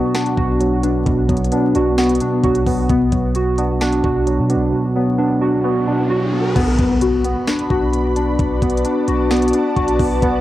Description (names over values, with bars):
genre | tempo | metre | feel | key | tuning
hip hop, trap | 131 BPM | 4/4 | half-time | B minor | A4 = 442 Hz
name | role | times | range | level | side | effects
mellow tine electric piano | accompaniment | 0.0-6.6 s | B2 to F#4 | -20 LUFS | right 3 dB | overdrive, low-pass filter, cassette tape
warbly lo-fi synth keys | arpeggios | 0.0-10.4 s | B3 to F#4 | -17 LUFS | left 1 dB | chorus, low-pass filter, cassette tape, tape echo
trap drum kit | drums | 0.1-10.3 s | crash cymbal, finger snaps, hi-hat, kick drum, snare drum | -22 LUFS | equal | cassette tape
long sustained 808-style bass | bass | 0.4-10.4 s | B1 to B2 | -22 LUFS | equal | none
riser and impact | sound effects | 5.4-8.4 s | none | -27 LUFS | left 1 dB | none
ethereal airy pad | sustained chords | 7.0-10.4 s | F#4 to B5 | -23 LUFS | equal | ensemble chorus, built-in reverb, cassette tape
room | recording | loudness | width
digital ambience | home recording on cassette, vinyl crackle | -15 LUFS | side -14 dB against mid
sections
0.0-6.6 A section; 6.6-10.4 B section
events
riser 5.4-6.6; impact 6.6-8.4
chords
0.0 Bm